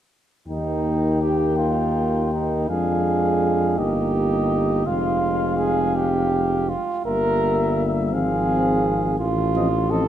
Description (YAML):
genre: classical, brass quintet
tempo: 55 BPM (dotted quarters)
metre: 6/8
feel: straight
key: Eb major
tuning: A4 = 440 Hz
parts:
  - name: mellow trumpet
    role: melody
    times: 0.5-10.0 s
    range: Eb5 to G5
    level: -28 LUFS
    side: left 5 dB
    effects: none
  - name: warm flugelhorn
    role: second line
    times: 0.5-10.1 s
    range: Eb4 to Bb4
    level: -24 LUFS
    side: right 4 dB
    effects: none
  - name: mellow French horn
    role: accompaniment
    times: 0.5-10.0 s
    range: Bb3 to Eb4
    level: -28 LUFS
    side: left 2 dB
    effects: none
  - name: warm trombone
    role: accompaniment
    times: 0.5-10.0 s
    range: F3 to Bb3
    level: -28 LUFS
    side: right 2 dB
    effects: none
  - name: warm bass trombone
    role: bass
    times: 0.5-10.1 s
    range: F1 to F2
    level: -23 LUFS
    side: left 1 dB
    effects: none
room: moderate recital hall reverb, RT60 1.4 s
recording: none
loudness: -19 LUFS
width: side -10 dB against mid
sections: 0.5-10.1 A section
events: none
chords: 0.5 Eb; 2.7 Ddim/F; 3.8 Eb/G; 4.9 Fm; 7.1 Edim/G; 8.1 Fm/Ab; 9.2 F7/A